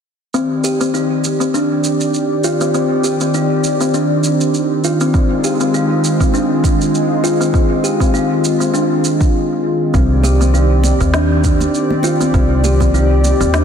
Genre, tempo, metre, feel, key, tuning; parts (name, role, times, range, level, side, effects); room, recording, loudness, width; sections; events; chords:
organic downtempo; 100 BPM; 4/4; swing 55% on 16ths; C minor; A4 = 440 Hz
warm analog pad; sustained chords; 0.3-13.6 s; Eb3 to D5; -17 LUFS; equal; lush chorus, sidechain pumping
kalimba; arpeggios; 0.3-13.6 s; C4 to G4; -17 LUFS; left 1 dB; low-pass filter, tape echo
electronic shaker and snare drum; drums; 0.3-13.6 s; -24 LUFS; right 2 dB; small room ambience
electronic kick drum; drums; 5.1-12.9 s; -15 LUFS; equal; small room ambience
upright bass; bass; 9.9-13.6 s; C2 to Eb2; -14 LUFS; equal
congas; percussion; 10.2-13.4 s; -26 LUFS; right 3 dB
moderate lush hall reverb, RT60 2.8 s; dense, heavily limited modern master; -12 LUFS; side -7 dB against mid
0.3-9.9 A section; 9.9-13.6 B section
break 9.3-9.9
0.3 Cmadd9; 5.1 Fm7; 9.9 Cmadd9